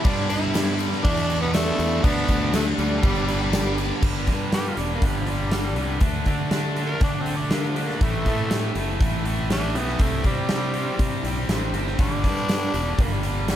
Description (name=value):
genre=classic rock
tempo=121 BPM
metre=4/4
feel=straight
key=G major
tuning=A4 = 439 Hz
part: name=growling tenor saxophone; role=melody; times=0.0-13.6 s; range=F3 to Bb4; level=-30 LUFS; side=left 1 dB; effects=none
part: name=octave-fuzz lead guitar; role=second line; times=0.0-3.7 s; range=G3 to E4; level=-31 LUFS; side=right 3 dB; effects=distortion, tape echo
part: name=tonewheel organ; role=sustained chords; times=0.0-13.6 s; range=A3 to G4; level=-38 LUFS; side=right 2 dB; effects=none
part: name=distorted electric guitar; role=riff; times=0.0-4.0 s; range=D3 to G4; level=-30 LUFS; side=equal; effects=overdrive
part: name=tight distorted guitar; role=riff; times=0.0-13.6 s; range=E2 to D4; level=-28 LUFS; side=equal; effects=distortion
part: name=huge arena drum kit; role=drums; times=0.0-13.6 s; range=crash cymbal, hi-hat, kick drum, snare drum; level=-24 LUFS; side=equal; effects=none
part: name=fuzz fingered electric bass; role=bass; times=0.1-13.6 s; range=E1 to D3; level=-27 LUFS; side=equal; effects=overdrive
part: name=tambourine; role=percussion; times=0.2-4.0, 12.0-13.6 s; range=none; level=-43 LUFS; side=left 9 dB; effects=none
room=light reverb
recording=none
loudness=-20 LUFS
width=side -11 dB against mid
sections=0.0-4.0 A section; 4.0-13.6 B section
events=tenor saxophone solo 4.0-13.6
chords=0.1 G; 1.0 Em7; 2.0 D; 3.0 G; 6.0 D; 8.0 Am; 10.0 Cadd9; 12.0 G